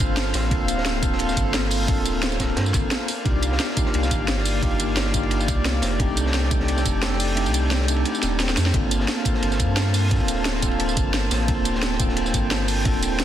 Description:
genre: liquid drum and bass.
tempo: 175 BPM.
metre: 4/4.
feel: swing 54% on 16ths.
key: G minor.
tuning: A4 = 439 Hz.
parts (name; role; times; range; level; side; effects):
mellow tine electric piano; accompaniment; 0.0-13.2 s; A3 to A4; -27 LUFS; equal; medium stereo tremolo, vintage 12-bit sampler grit, ping-pong delay.
warm analog pad; sustained chords; 0.0-13.2 s; Bb3 to A5; -29 LUFS; right 1 dB; chorus.
warm sub bass; bass; 0.0-13.2 s; D1 to G2; -24 LUFS; equal; none.
crunchy breakbeat drum kit; drums; 0.0-13.2 s; hi-hat, ride cymbal, snare drum; -31 LUFS; equal; high-pass filter on cymbals, high-pass filter on hats, high-pass filter on snare, high-pass filter on room.
drum and bass drum kit; drums; 0.0-13.2 s; hi-hat, snare drum, tambourine; -27 LUFS; right 1 dB; none.
electronic kick drum; drums; 0.0-12.9 s; none; -25 LUFS; equal; overdrive.
room: light reverb.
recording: dense, heavily limited modern master.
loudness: -19 LUFS.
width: side -11 dB against mid.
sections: 0.0-13.2 A section.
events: kick drops out 7.4-8.7; drum fill 8.2-8.7.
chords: 0.0 Gm11; 3.1 Cm11; 6.0 F13; 8.7 Gm11.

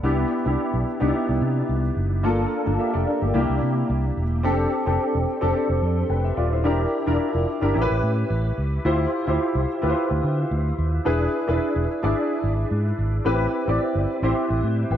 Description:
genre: polished 1980s jazz-funk pop.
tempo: 109 BPM.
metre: 4/4.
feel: swing 54% on 16ths.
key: C major.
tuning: A4 = 440 Hz.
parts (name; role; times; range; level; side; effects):
warm concert grand piano; accompaniment; 0.0-15.0 s; Bb3 to G5; -22 LUFS; equal; ensemble chorus.
fingered electric bass; bass; 0.0-15.0 s; Eb1 to D3; -23 LUFS; equal; none.
room: little or no reverb.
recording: dry, close 1970s-style studio recording.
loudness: -20 LUFS.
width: side -10 dB against mid.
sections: 0.0-15.0 A section.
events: none.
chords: 0.0 Cmaj7; 2.2 Gm7; 3.3 C7; 4.4 F69; 6.6 Em7b5; 7.8 A7; 8.9 Dm11; 11.1 E7; 13.3 Am7.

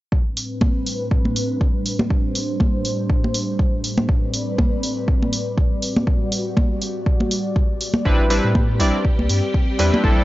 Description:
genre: deep house.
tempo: 121 BPM.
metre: 4/4.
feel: swing 56% on 16ths.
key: A dorian.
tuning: A4 = 439 Hz.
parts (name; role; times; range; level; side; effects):
airy breathy pad; sustained chords; 0.1-10.2 s; A2 to D5; -25 LUFS; equal; chorus, sidechain pumping.
electronic kick drum; drums; 0.1-10.2 s; none; -18 LUFS; equal; none.
electronic hi-hat; drums; 0.4-9.9 s; none; -26 LUFS; right 1 dB; none.
congas; percussion; 0.6-10.0 s; none; -23 LUFS; equal; none.
warm analog keys; stabs; 8.1-10.2 s; G3 to D5; -21 LUFS; equal; chorus.
warm sub bass; bass; 8.1-10.2 s; A1 to A2; -20 LUFS; equal; sidechain pumping.
string machine, violins; texture; 8.1-10.2 s; G3 to G4; -30 LUFS; equal; ensemble chorus.
room: little or no reverb.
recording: dry, gritty hardware recording, nothing above 7.5 kHz.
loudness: -18 LUFS.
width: side -17 dB against mid.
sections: 0.1-10.2 A section.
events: filter sweep on analog synth pad 0.1-10.2.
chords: 0.1 Am11; 2.1 D7sus4/A; 4.1 Am11; 5.8 Dadd11/A; 8.1 Am11.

